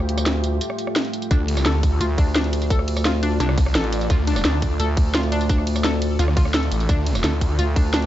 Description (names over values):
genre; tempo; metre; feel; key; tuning
dark technical drum and bass; 172 BPM; 4/4; straight; D minor; A4 = 441 Hz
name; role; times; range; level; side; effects
deep dark ambient pad; sustained chords; 0.0-8.1 s; A3 to G5; -28 LUFS; equal; chorus, built-in reverb, sidechain pumping
growling FM bass; bass; 0.0-8.1 s; A1 to D2; -22 LUFS; equal; tube saturation
drum and bass drum kit; drums; 0.0-8.1 s; hi-hat, ride cymbal, rim click, snare drum, tambourine; -25 LUFS; equal; studio reverb
analog pluck; arpeggios; 1.3-8.1 s; D4 to A4; -28 LUFS; left 2 dB; chorus, cassette tape, sidechain pumping, digital delay
snarling distorted saw bass; bass; 1.3-7.6 s; A1 to D2; -21 LUFS; equal; distortion, sidechain pumping
electronic kick drum; drums; 1.3-7.8 s; none; -19 LUFS; equal; studio reverb
room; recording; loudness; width
digital ambience; nothing above 7.7 kHz; -18 LUFS; side -13 dB against mid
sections
0.0-8.1 A section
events
break 0.6-1.3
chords
0.0 Dm